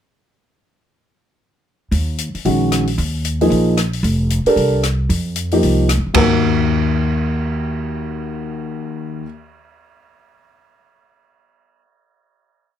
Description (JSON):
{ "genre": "modal jazz", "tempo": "226 BPM", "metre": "4/4", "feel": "swing 60% on 8ths", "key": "Eb dorian", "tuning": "A4 = 440 Hz", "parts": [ { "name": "upright bass", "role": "bass", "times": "1.9-9.2 s", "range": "F1 to F2", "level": "-20 LUFS", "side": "equal", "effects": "none" }, { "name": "open jazz drum kit", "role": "drums", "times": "1.9-6.2 s", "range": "hi-hat, kick drum, ride cymbal, rim click, toms", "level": "-23 LUFS", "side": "left 2 dB", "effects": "none" }, { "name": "dark upright piano", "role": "accompaniment", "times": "2.5-9.2 s", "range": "Eb2 to Bb4", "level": "-17 LUFS", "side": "equal", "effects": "none" } ], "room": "light reverb", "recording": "none", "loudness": "-15 LUFS", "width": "side -9 dB against mid", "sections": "1.9-6.2 A section; 6.2-8.3 final chord", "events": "none", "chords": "1.9 Eb9sus4; 4.0 F13sus4; 6.2 Ebm" }